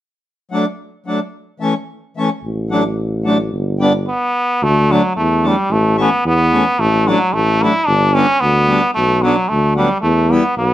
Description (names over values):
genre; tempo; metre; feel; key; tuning
alpine folk, alpine dance band; 110 BPM; 2/4; swing 54% on 8ths; D major; A4 = 438 Hz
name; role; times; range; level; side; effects
accordion; accompaniment; 0.5-10.4 s; E3 to E4; -17 LUFS; left 1 dB; none
warm tuba; bass; 2.4-10.7 s; G1 to E2; -17 LUFS; equal; none
trombone with metal mute; melody; 4.1-10.7 s; F#3 to E4; -15 LUFS; equal; none
room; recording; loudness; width
light reverb; none; -13 LUFS; side -13 dB against mid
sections
0.2-4.6 A section; 4.6-10.7 B section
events
none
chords
0.2 D; 1.3 A; 2.4 D/A; 3.5 G; 4.6 D; 5.7 A; 6.8 D/A; 7.9 G; 9.0 Bm; 10.0 Em